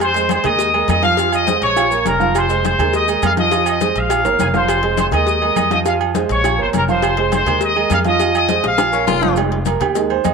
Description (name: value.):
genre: latin, salsa.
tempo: 205 BPM.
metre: 4/4.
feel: straight.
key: F minor.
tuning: A4 = 440 Hz.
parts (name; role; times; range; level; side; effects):
bright trumpet section; melody; 0.0-9.2 s; Ab4 to Eb6; -17 LUFS; left 2 dB; none.
upright bass; bass; 0.0-10.3 s; F1 to F2; -23 LUFS; left 1 dB; none.
agogo bells and timbales; percussion; 0.0-10.3 s; none; -24 LUFS; right 12 dB; none.
congas; percussion; 0.0-10.3 s; none; -24 LUFS; left 14 dB; none.
cowbell and bongos; percussion; 0.0-10.3 s; none; -25 LUFS; left 14 dB; none.
maracas; percussion; 0.0-10.3 s; none; -34 LUFS; left 18 dB; none.
clear concert grand piano; accompaniment; 0.2-10.3 s; F3 to F5; -20 LUFS; right 11 dB; none.
breathy baritone saxophone; second line; 8.9-9.3 s; Db4 to F4; -22 LUFS; left 11 dB; none.
room: moderate spring reverb, RT60 1.9 s.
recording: 1960s-style stereo with parts hard left and right.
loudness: -14 LUFS.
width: side -5 dB against mid.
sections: 0.0-9.4 A section.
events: drum fill 4.2-4.7, 8.6-9.4.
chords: 0.0 Fm7; 0.6 Ebsus4; 1.2 Fm7; 1.8 Bbm; 2.4 Fm7; 2.9 Ebsus4; 3.5 Fm7; 4.1 Bbm; 4.7 Fm7; 5.3 Ebsus4; 5.9 Fm; 6.4 Bbm; 7.0 Fm7; 7.6 Ebsus4; 8.2 Fm7; 8.8 Bbm; 9.4 Fm7.